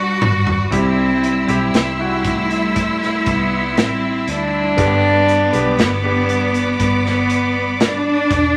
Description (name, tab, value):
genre	pop ballad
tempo	59 BPM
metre	4/4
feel	straight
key	G major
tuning	A4 = 440 Hz
part	warm cello	melody	0.0-8.3 s	A3 to D4	-22 LUFS	equal	none
part	clear studio cello section	second line	0.0-8.6 s	B3 to F#4	-23 LUFS	equal	none
part	clear concert grand piano	accompaniment	0.0-8.6 s	G2 to G4	-26 LUFS	equal	none
part	warm symphonic string section	sustained chords	0.0-8.6 s	G3 to E6	-26 LUFS	equal	none
part	vintage muted fingered electric bass	bass	0.0-8.6 s	E1 to D2	-25 LUFS	equal	none
part	modern studio drum kit	drums	0.2-8.5 s	hi-hat, kick drum, snare drum, toms	-23 LUFS	equal	none
room	moderate studio reverb, RT60 0.9 s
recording	vinyl crackle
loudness	-17 LUFS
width	mono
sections	0.0-8.6 A section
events	drum fill 0.0-0.7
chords	0.0 G; 0.7 C; 4.8 G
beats	| 0.72 1.74 2.76 3.77 | 4.78 5.79 6.80 7.80